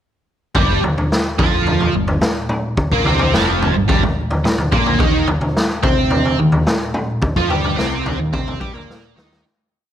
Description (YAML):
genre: psychedelic rock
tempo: 108 BPM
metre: 4/4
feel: straight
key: G minor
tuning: A4 = 440 Hz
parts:
  - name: biting overdriven guitar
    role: riff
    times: 0.5-9.4 s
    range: F2 to C5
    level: -18 LUFS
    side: right 1 dB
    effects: flanger
  - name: raw garage drum kit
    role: drums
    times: 0.5-9.4 s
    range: kick drum, snare drum, toms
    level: -17 LUFS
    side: equal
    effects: none
  - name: growling picked electric bass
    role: bass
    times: 0.6-9.4 s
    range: F1 to C3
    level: -22 LUFS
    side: equal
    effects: overdrive
room: light reverb, small room ambience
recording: none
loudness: -14 LUFS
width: side -10 dB against mid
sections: 0.6-9.5 riff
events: fade-out 7.2-9.5; drum fill 8.9-9.5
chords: 0.6 Gm; 5.0 Eb5